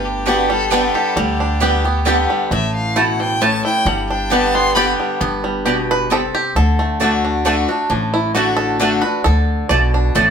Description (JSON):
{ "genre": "bluegrass", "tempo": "133 BPM", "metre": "3/4", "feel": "straight", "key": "G major", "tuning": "A4 = 440 Hz", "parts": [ { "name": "bluegrass banjo", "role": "melody", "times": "0.0-10.3 s", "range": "E3 to D5", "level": "-21 LUFS", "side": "right 2 dB", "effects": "none" }, { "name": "clear fiddle", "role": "melody", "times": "0.0-4.9 s", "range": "F#4 to C6", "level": "-21 LUFS", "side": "left 1 dB", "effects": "none" }, { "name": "picked swing-style acoustic guitar", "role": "accompaniment", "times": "0.0-10.3 s", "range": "G2 to G4", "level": "-19 LUFS", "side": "left 2 dB", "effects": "none" }, { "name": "upright bass", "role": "bass", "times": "0.0-10.3 s", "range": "G1 to D2", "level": "-20 LUFS", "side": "equal", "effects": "none" }, { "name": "mandolin", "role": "stabs", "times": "0.3-10.3 s", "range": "A3 to A5", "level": "-19 LUFS", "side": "right 4 dB", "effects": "none" } ], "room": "moderate stone room reverb, RT60 1.1 s", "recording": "band playing live in one room", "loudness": "-14 LUFS", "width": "side -7 dB against mid", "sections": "0.0-5.2 A section; 5.2-10.3 B section", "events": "five-string banjo solo 5.2-10.3", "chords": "0.0 G; 2.5 A; 3.9 G; 6.6 D" }